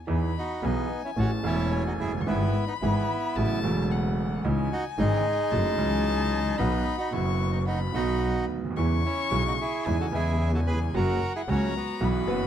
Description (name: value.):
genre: tango.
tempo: 111 BPM.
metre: 4/4.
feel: rubato.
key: E major.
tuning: A4 = 440 Hz.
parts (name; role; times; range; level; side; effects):
dark violin; second line; 0.0-12.5 s; F#5 to C#6; -35 LUFS; left 7 dB; none.
warm baby grand piano; accompaniment; 0.1-12.5 s; E1 to D#5; -29 LUFS; right 3 dB; none.
dark double bass; bass; 0.1-12.5 s; E1 to E2; -28 LUFS; left 1 dB; none.
bandoneon; melody; 0.4-12.5 s; G#3 to B4; -30 LUFS; equal; plate reverb.
vintage hollow-body jazz guitar; second line; 12.3-12.5 s; B4; -31 LUFS; left 5 dB; none.
room: light reverb.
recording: dark, warm production.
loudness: -24 LUFS.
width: side -10 dB against mid.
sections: 0.1-12.5 A section.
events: none.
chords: 0.1 Emaj7; 1.2 Amaj7; 2.3 E/G#; 3.4 A6; 4.4 C#madd9; 5.5 F#m7; 6.6 B; 8.8 E6; 9.9 C#madd9/E; 10.9 F#.